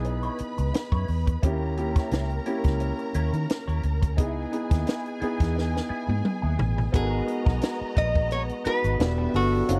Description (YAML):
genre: lush 1970s-style soul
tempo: 87 BPM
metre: 4/4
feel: swing 54% on 16ths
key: G# minor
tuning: A4 = 437 Hz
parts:
  - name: dark studio string section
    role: second line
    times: 0.0-9.8 s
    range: G3 to B5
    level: -38 LUFS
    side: equal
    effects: none
  - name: warm concert grand piano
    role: accompaniment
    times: 0.0-9.8 s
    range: A#3 to B4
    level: -33 LUFS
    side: equal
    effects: none
  - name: electric guitar through a small old amp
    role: riff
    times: 0.0-9.8 s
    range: B3 to C#5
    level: -41 LUFS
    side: equal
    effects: wah, phaser
  - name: vintage muted fingered electric bass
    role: bass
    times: 0.0-9.8 s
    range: E1 to D#3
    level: -29 LUFS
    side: equal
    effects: none
  - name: compact cocktail drum kit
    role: drums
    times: 0.0-9.8 s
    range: hi-hat, kick drum, snare drum, toms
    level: -27 LUFS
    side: equal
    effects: none
  - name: percussive tonewheel organ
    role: sustained chords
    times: 6.9-9.8 s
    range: C#3 to F#4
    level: -40 LUFS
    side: equal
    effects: fast rotary speaker
  - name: lap resonator guitar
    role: melody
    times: 7.0-9.8 s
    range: F#4 to D#5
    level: -30 LUFS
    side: equal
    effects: none
room: little or no reverb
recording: dry, close 1970s-style studio recording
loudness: -26 LUFS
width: mono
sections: 0.0-6.9 A section; 6.9-9.8 B section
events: drum fill 5.6-6.9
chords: 0.0 C#m7; 1.4 D#7b9; 4.2 C#m7 (rootless); 6.9 G#m9; 9.0 Em7